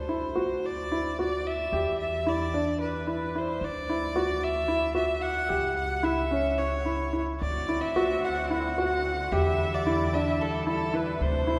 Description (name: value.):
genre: contemporary instrumental, chamber music in an uneven meter.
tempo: 222 BPM (eighths).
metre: 7/8.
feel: straight.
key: unclear.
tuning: A4 = 440 Hz.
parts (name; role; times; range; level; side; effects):
rich violin; melody; 0.0-11.6 s; A4 to F#5; -32 LUFS; equal; none.
upright bass; bass; 0.0-11.6 s; C#2 to E2; -36 LUFS; equal; none.
felt-muted upright piano; arpeggios; 0.1-11.6 s; C#4 to G4; -31 LUFS; equal; none.
muted studio string section; sustained chords; 7.4-11.6 s; C3 to F#4; -37 LUFS; equal; none.
room: wet cathedral reverb, RT60 4.4 s.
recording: recorded in a church or concert hall.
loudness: -28 LUFS.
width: mono.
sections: 0.0-11.6 A section.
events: none.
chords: 0.0 D7; 1.7 Em7; 3.6 D; 5.5 C#dim; 7.4 D7; 9.3 Em7.